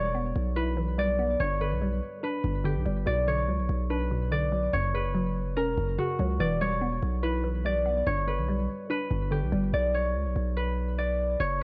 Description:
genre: hip hop, drill.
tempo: 144 BPM.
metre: 4/4.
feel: half-time.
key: B harmonic minor.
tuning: A4 = 439 Hz.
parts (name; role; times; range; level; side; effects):
concert harp; melody; 0.0-11.6 s; F#4 to D5; -32 LUFS; equal; low-pass filter.
glassy wavetable pluck; accompaniment; 0.0-9.7 s; F#2 to E4; -35 LUFS; equal; chorus, low-pass filter.
distorted 808-style bass; bass; 0.0-11.6 s; E1 to C#2; -32 LUFS; equal; distortion.
room: light reverb, studio reverb.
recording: worn, warbling old tape, cassette tape, warbly pitch drift.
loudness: -28 LUFS.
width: mono.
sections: 0.0-9.7 A section; 9.7-11.6 B section.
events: none.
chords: 0.0 Em7; 1.4 G; 3.1 Bm; 4.7 F#; 6.4 Em7; 8.1 G; 9.7 Bm.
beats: 0.15 0.57 0.98 | 1.40 1.82 2.23 2.65 | 3.07 3.48 3.90 4.32 | 4.73 5.15 5.57 5.98 | 6.40 6.82 7.23 7.65 | 8.07 8.48 8.90 9.32 | 9.73 10.15 10.57 10.98 | 11.40.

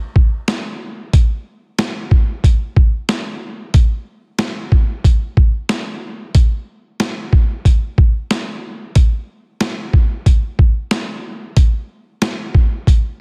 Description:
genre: dream pop.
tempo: 92 BPM.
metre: 4/4.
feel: straight.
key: none.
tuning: none.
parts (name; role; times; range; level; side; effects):
boom bap sampler-style drum kit; drums; 0.2-13.0 s; hi-hat, kick drum, snare drum; -16 LUFS; equal; none.
room: light reverb.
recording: dense, heavily limited modern master.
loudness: -16 LUFS.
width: mono.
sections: 0.0-13.2 A section.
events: none.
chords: none.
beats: 0.48 | 1.13 1.78 2.44 3.09 | 3.74 4.39 5.05 5.70 | 6.35 7.00 7.66 8.31 | 8.96 9.61 10.26 10.91 | 11.57 12.22 12.87.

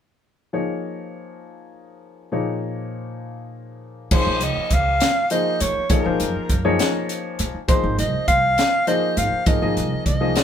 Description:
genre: electric jazz fusion.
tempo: 67 BPM (dotted quarters).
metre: 6/8.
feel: straight.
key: Bb minor.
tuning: A4 = 440 Hz.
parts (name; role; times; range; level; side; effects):
warm concert grand piano; accompaniment; 0.5-10.4 s; Bb2 to Eb5; -24 LUFS; left 3 dB; none.
warm soprano saxophone; melody; 4.1-10.4 s; Bb4 to F5; -21 LUFS; right 1 dB; none.
upright bass; bass; 4.1-10.3 s; Ab1 to Gb2; -25 LUFS; right 1 dB; none.
crisp fusion drum kit; drums; 4.1-10.4 s; crash cymbal, hi-hat, kick drum, snare drum; -22 LUFS; equal; none.
room: moderate studio reverb, RT60 0.6 s.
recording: band playing live in one room.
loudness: -18 LUFS.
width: side -9 dB against mid.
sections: 0.5-4.1 A section; 4.1-10.4 B section.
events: none.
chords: 0.5 Bbm7; 2.3 Ebsus2/Bb; 4.1 Bbm9; 5.9 Ebm9/Bb; 7.7 Ab69.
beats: | 0.53 1.43 | 2.32 3.22 | 4.12 5.01 | 5.90 6.79 | 7.69 8.58 | 9.47 10.36.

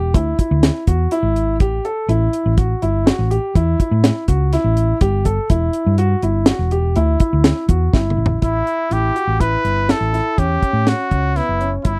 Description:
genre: progressive instrumental, band music in an uneven meter.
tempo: 123 BPM.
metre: 7/4.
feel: straight.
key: A mixolydian.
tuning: A4 = 440 Hz.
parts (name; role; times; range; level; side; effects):
warm concert grand piano; arpeggios; 0.0-12.0 s; B3 to A4; -24 LUFS; equal; none.
hollow-body short-scale fingered electric bass; bass; 0.0-12.0 s; E1 to A2; -20 LUFS; equal; none.
deep reggae drum kit; drums; 0.1-12.0 s; hi-hat, kick drum, snare drum, toms; -18 LUFS; equal; none.
bright trumpet; melody; 8.4-12.0 s; E4 to B4; -22 LUFS; equal; none.
room: little or no reverb.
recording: dry, close 1970s-style studio recording.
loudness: -17 LUFS.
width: mono.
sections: 0.0-8.4 A section; 8.4-12.0 B section.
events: drum fill 7.9-8.4.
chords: 0.0 N.C.; 1.6 A7(no3); 5.0 G5; 8.4 A7.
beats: 0.14 0.63 1.12 | 1.60 2.09 2.58 3.07 3.55 4.04 4.53 | 5.01 5.50 5.99 6.48 6.96 7.45 7.94 | 8.43 8.92 9.41 9.89 10.38 10.88 11.37 | 11.86.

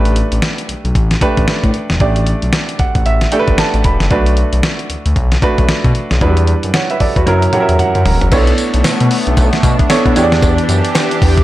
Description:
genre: R&B, new jack swing.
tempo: 114 BPM.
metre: 4/4.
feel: swing 60% on 16ths.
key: B minor.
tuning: A4 = 439 Hz.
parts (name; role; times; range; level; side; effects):
clear grand piano; accompaniment; 0.0-11.4 s; F#3 to B5; -16 LUFS; right 2 dB; none.
smooth synth bass; bass; 0.0-11.4 s; E1 to B2; -15 LUFS; equal; none.
dusty soul sampler-style drum kit; drums; 0.1-11.4 s; crash cymbal, hi-hat, kick drum, snare drum, tambourine, toms; -15 LUFS; equal; gated reverb.
lush unison pad; sustained chords; 8.3-11.4 s; E3 to G4; -17 LUFS; equal; chorus.
cowbell; percussion; 8.3-11.1 s; none; -27 LUFS; left 3 dB; none.
room: digital ambience.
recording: none.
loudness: -11 LUFS.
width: side -15 dB against mid.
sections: 0.0-8.3 A section; 8.3-11.4 B section.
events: grand piano fill 2.5-4.1, 7.3-8.3; drum fill 7.3-8.3.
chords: 0.0 A9sus4; 4.1 Bm7; 6.2 Em7; 7.3 F#7; 8.3 Bm11; 10.2 Em7.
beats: 0.42 0.95 1.48 | 2.00 2.53 3.06 3.58 | 4.11 4.63 5.16 5.69 | 6.21 6.74 7.27 7.79 | 8.32 8.85 9.37 9.90 | 10.43 10.95.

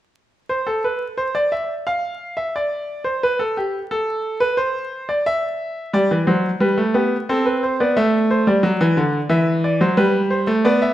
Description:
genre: classical, baroque-style two-part invention for grand piano.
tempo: 89 BPM.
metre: 4/4.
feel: straight.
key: unclear.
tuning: A4 = 440 Hz.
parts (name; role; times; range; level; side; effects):
bright grand piano; solo; 0.5-10.9 s; D3 to F5; -17 LUFS; equal; none.
room: moderate recital hall reverb, RT60 1.2 s.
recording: minimal, uncompressed stereo recording, vinyl crackle.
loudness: -17 LUFS.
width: side -13 dB against mid.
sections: 0.5-10.9 A section.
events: none.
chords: 0.5 N.C.; 5.9 G; 7.3 Am7; 8.6 D7; 10.0 G.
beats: | 0.49 1.18 1.86 2.54 | 3.22 3.90 4.58 5.26 | 5.94 6.62 7.29 7.97 | 8.64 9.31 9.98 10.66.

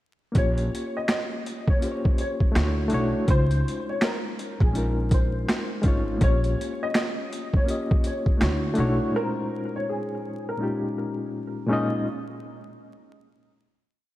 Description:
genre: lo-fi hip hop.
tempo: 82 BPM.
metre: 4/4.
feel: swing 62% on 16ths.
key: Bb dorian.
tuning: A4 = 440 Hz.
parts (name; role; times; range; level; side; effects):
barky reed electric piano; accompaniment; 0.3-12.1 s; Bb2 to Eb5; -28 LUFS; left 1 dB; fast tremolo.
boom bap sampler-style drum kit; drums; 0.3-9.0 s; finger snaps, hi-hat, kick drum, snare drum; -24 LUFS; equal; overdrive.
warm upright piano; melody; 0.4-10.8 s; Ab4 to Eb5; -32 LUFS; left 1 dB; ensemble chorus, ping-pong delay.
upright bass; bass; 0.4-9.0 s; Ab1 to D2; -25 LUFS; equal; none.
room: light reverb.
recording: vinyl crackle.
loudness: -22 LUFS.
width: side -15 dB against mid.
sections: 0.4-12.1 A section.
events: none.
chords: 0.4 Bbm69; 2.5 Dmaj7; 3.3 Dbmaj7; 6.2 Bbm6; 8.4 Dmaj7; 9.1 Bbm11.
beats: | 0.35 1.09 1.82 2.55 | 3.28 4.01 4.75 5.48 | 6.21 6.94 7.67 8.40 | 9.13 9.87 10.60 11.33.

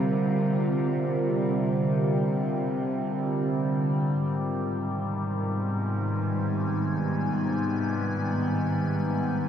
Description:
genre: ambient.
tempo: free time.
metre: none.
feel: none.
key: unclear.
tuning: A4 = 440 Hz.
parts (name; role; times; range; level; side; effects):
evolving wavetable pad; sustained chords; 0.0-9.5 s; D3 to Ab5; -26 LUFS; right 1 dB; chorus, built-in reverb, phaser.
muted studio cello section; bass; 0.0-9.5 s; Ab2 to C3; -33 LUFS; equal; none.
overtone-sweeping drone; drone; 0.0-9.5 s; C3 to G3; -31 LUFS; left 1 dB; chorus, built-in reverb.
room: moderate huge ambient reverb, RT60 9.3 s.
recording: dark, warm production.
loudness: -24 LUFS.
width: side -9 dB against mid.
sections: 0.0-9.5 A section.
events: none.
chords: 0.0 Gm7; 4.2 Abm.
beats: free time.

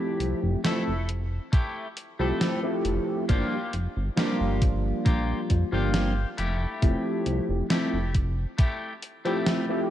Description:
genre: vaporwave.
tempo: 68 BPM.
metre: 4/4.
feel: straight.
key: unclear.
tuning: A4 = 440 Hz.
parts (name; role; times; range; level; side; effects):
overdriven tine electric piano; accompaniment; 0.0-9.9 s; F3 to A4; -28 LUFS; equal; analog chorus, tape echo.
clean electric guitar; riff; 0.0-9.8 s; A3 to A4; -34 LUFS; left 3 dB; lush chorus, vintage 12-bit sampler grit, tape echo.
chorused synth bass; bass; 0.2-8.5 s; F1 to F2; -27 LUFS; equal; none.
gated 80s digital drum machine; drums; 0.2-9.7 s; hi-hat, snare drum; -29 LUFS; equal; gated reverb, gated reverb snare.
electronic kick drum; drums; 1.5-8.8 s; none; -22 LUFS; equal; none.
room: light reverb, digital ambience.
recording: cassette tape.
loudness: -24 LUFS.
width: side -12 dB against mid.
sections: 0.0-9.9 A section.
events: none.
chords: 0.0 Fmaj9; 3.3 Gm7; 6.4 Fmaj9.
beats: 0.65 1.53 2.41 | 3.29 4.18 5.06 5.94 | 6.82 7.71 8.59 9.47.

